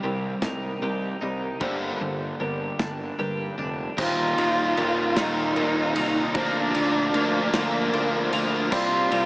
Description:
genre	post-rock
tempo	51 BPM (dotted quarters)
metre	6/8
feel	straight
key	Eb major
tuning	A4 = 440 Hz
part	pedal steel guitar	sustained chords	0.0-9.3 s	D3 to C6	-34 LUFS	right 1 dB	none
part	felt-muted upright piano	arpeggios	0.0-9.3 s	Bb4 to D5	-34 LUFS	right 2 dB	tape echo
part	twelve-string electric guitar	arpeggios	0.0-9.3 s	Eb2 to G4	-34 LUFS	equal	lush chorus, tape echo
part	crunchy overdriven guitar	riff	0.0-9.3 s	Eb2 to C4	-27 LUFS	left 1 dB	ensemble chorus
part	fuzz fingered electric bass	bass	0.0-9.3 s	Eb1 to G2	-32 LUFS	equal	overdrive
part	loose indie drum kit	drums	0.4-9.3 s	crash cymbal, kick drum, ride cymbal, snare drum	-32 LUFS	equal	none
part	dark cello	melody	4.0-9.3 s	Bb3 to F4	-24 LUFS	right 1 dB	tape echo
room	wet huge ambient reverb, RT60 8.8 s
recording	dreamy mix soaked in reverb, small speaker sound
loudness	-22 LUFS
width	side -23 dB against mid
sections	0.0-4.0 A section; 4.0-9.3 B section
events	build-up 0.0-4.0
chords	0.0 Cm; 1.6 Gm; 4.0 Eb; 6.4 Bb/D; 8.7 Cmadd9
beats	0.43 | 1.61 2.80 | 3.98 5.17 | 6.36 7.54 | 8.73

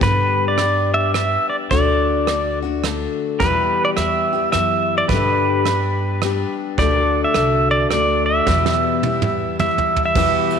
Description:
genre	honky-tonk and classic country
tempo	106 BPM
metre	3/4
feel	swing 62% on 8ths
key	E minor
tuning	A4 = 440 Hz
part	pedal steel guitar	melody	0.0-10.6 s	B4 to E5	-19 LUFS	right 2 dB	none
part	picked steel-string acoustic guitar	accompaniment	0.0-10.6 s	E2 to G4	-22 LUFS	left 10 dB	none
part	upright bass	bass	0.0-10.6 s	C2 to G2	-23 LUFS	right 1 dB	none
part	soft brush drum kit	drums	0.0-10.6 s	crash cymbal, hi-hat, kick drum, ride cymbal, rim click, snare drum, toms	-24 LUFS	right 5 dB	none
part	pedal steel guitar	sustained chords	3.4-10.6 s	F#4 to E5	-29 LUFS	right 12 dB	wide subtle chorus
room	moderate echo chamber reverb, RT60 2.2 s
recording	1960s-style stereo with parts hard left and right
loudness	-16 LUFS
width	side -7 dB against mid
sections	0.0-10.2 A section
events	drum fill 8.5-10.2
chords	0.0 G; 1.7 D; 3.4 Em; 5.1 G; 6.8 D; 8.5 Em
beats	| 0.02 0.58 1.15 | 1.71 2.28 2.84 | 3.40 3.97 4.53 | 5.09 5.66 6.22 | 6.78 7.35 7.91 | 8.47 9.04 9.60 | 10.16

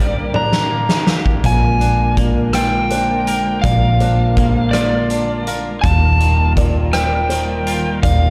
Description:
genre	post-rock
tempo	55 BPM (dotted quarters)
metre	6/8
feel	straight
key	unclear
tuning	A4 = 444 Hz
part	overdriven slide guitar	melody	0.0-8.3 s	D5 to Bb5	-22 LUFS	equal	tape echo
part	muted studio string section	sustained chords	0.0-8.3 s	D3 to Bb4	-27 LUFS	equal	none
part	felt-muted upright piano	arpeggios	0.0-8.3 s	C5 to F5	-32 LUFS	equal	tape echo
part	twangy electric guitar	arpeggios	0.0-8.3 s	Eb2 to Bb4	-25 LUFS	equal	tape echo
part	huge arena drum kit	drums	0.3-8.2 s	hi-hat, kick drum, rim click, snare drum, toms	-22 LUFS	equal	none
part	hollow-body short-scale picked electric bass	bass	1.4-8.3 s	Eb1 to Bb1	-20 LUFS	equal	none
room	small room ambience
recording	dark, warm production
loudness	-16 LUFS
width	mono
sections	0.0-8.3 A section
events	drum fill 0.3-1.4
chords	0.0 Gm; 1.4 Bb7; 5.8 Ebadd9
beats	0.35 | 1.45 2.55 | 3.65 4.75 | 5.84 6.94 | 8.04

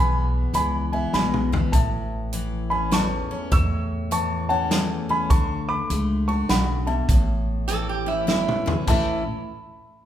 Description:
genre	honky-tonk and classic country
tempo	101 BPM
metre	3/4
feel	swing 63% on 8ths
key	A major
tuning	A4 = 443 Hz
part	dark upright piano	melody	0.0-9.2 s	E5 to E6	-26 LUFS	equal	none
part	picked steel-string acoustic guitar	accompaniment	0.0-9.2 s	E2 to F#4	-28 LUFS	left 3 dB	none
part	upright bass	bass	0.0-9.2 s	A1 to E2	-26 LUFS	equal	none
part	natural country drum kit	drums	0.5-9.0 s	crash cymbal, hi-hat, kick drum, snare drum, toms	-23 LUFS	equal	none
part	lap resonator guitar	second line	7.7-9.2 s	E4 to A4	-26 LUFS	right 4 dB	none
room	moderate large studio reverb, RT60 1.4 s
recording	band playing live in one room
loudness	-20 LUFS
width	side -11 dB against mid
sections	0.0-8.9 A section; 8.9-10.1 B section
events	drum fill 1.1-1.7, 8.3-8.9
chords	0.0 E; 1.7 A; 5.3 D; 7.1 A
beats	0.55 1.14 | 1.74 2.33 2.92 | 3.52 4.12 4.71 | 5.30 5.90 6.50 | 7.09 7.68 8.28 | 8.87

